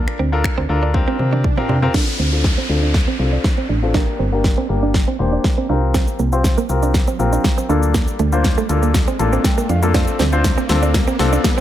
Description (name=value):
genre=dance-pop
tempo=120 BPM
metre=4/4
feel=straight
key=D minor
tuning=A4 = 440 Hz
part: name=bright concert grand piano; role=accompaniment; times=0.0-11.6 s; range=Bb3 to A5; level=-22 LUFS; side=left 4 dB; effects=sidechain pumping, low-pass filter
part: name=direct-recorded clean electric guitar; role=riff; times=0.0-11.6 s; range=A3 to D4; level=-24 LUFS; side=right 6 dB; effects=analog chorus, low-pass filter
part: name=solid FM bass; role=bass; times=0.0-11.4 s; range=E1 to C3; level=-18 LUFS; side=equal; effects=sidechain pumping
part: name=swell, riser and downlifter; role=sound effects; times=0.5-11.6 s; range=none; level=-28 LUFS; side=equal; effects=none
part: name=pop drum kit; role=drums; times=0.1-11.6 s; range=crash cymbal, finger snaps, hi-hat, kick drum, shaker, snare drum, toms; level=-18 LUFS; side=equal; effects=none
room=little or no reverb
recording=none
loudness=-15 LUFS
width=side -12 dB against mid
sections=0.0-1.9 A section; 1.9-11.6 B section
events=drum fill 0.9-1.9, 1.9-11.6; build-up 1.9-11.6; riser 1.9-11.6; filter sweep 1.9-11.6; grand piano fill 8.9-9.9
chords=0.0 Bbmaj7/D; 0.9 C7sus4; 1.9 Dm7; 3.9 Gm; 5.7 C7sus4; 7.7 Bbmaj7/D; 9.9 Dm7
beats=0.44 0.94 1.44 | 1.94 2.44 2.94 3.44 | 3.94 4.44 4.94 5.44 | 5.94 6.44 6.94 7.44 | 7.94 8.44 8.94 9.44 | 9.94 10.44 10.94 11.44